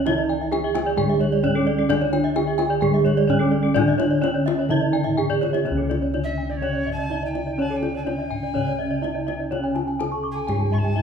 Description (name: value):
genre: Balinese gamelan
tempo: 127 BPM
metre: 4/4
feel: uneven beats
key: C# pelog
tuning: A4 = 440 Hz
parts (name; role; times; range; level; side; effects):
- gamelan-type bronze metallophone; melody; 0.0-11.0 s; C#4 to A4-40c; -24 LUFS; right 4 dB; none
- gamelan-type bronze metallophone; accompaniment; 0.0-11.0 s; C#3 to G#3-45c; -30 LUFS; right 1 dB; none
- gamelan-type bronze metallophone; arpeggios; 0.0-11.0 s; A4-40c to D6; -28 LUFS; left 5 dB; none
- gamelan-type bossed gongs; bass; 0.0-11.0 s; C#2 to E4-50c; -25 LUFS; left 2 dB; none
- kendang; percussion; 0.1-11.0 s; none; -30 LUFS; left 6 dB; none
- gamelan-type bronze metallophone; arpeggios; 0.2-11.0 s; A4-40c to C#6; -30 LUFS; right 4 dB; none
- breathy alto recorder; second line; 6.2-11.0 s; C#5 to C#6; -32 LUFS; equal; none
room: moderate recital hall reverb, RT60 1.3 s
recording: minimal, uncompressed stereo recording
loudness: -20 LUFS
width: side -6 dB against mid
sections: 0.0-5.7 A section; 5.7-11.0 B section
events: drum fill 5.1-5.7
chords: none